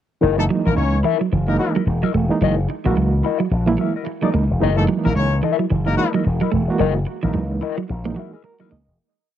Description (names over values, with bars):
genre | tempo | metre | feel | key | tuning
funk | 110 BPM | 4/4 | swing 60% on 16ths | F# mixolydian | A4 = 439 Hz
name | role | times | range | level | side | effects
mellow electric guitar | accompaniment | 0.2-8.9 s | E4 to E5 | -23 LUFS | left 12 dB | wah
overdriven reed electric piano | stabs | 0.2-9.0 s | E3 to D#5 | -23 LUFS | right 4 dB | fast tremolo, tape echo
slap bass with an envelope filter | bass | 0.2-9.0 s | E1 to C#2 | -20 LUFS | left 1 dB | none
clear horn section | second line | 0.4-6.1 s | F#3 to C#5 | -23 LUFS | left 4 dB | none
clean electric guitar | riff | 0.4-8.8 s | E3 to A#3 | -23 LUFS | right 6 dB | spring reverb
room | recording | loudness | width
light reverb | dry, close 1970s-style studio recording | -17 LUFS | side -10 dB against mid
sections
0.2-9.0 groove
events
fade-out 6.8-9.0; reed electric piano fill 7.9-9.0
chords
0.2 F#13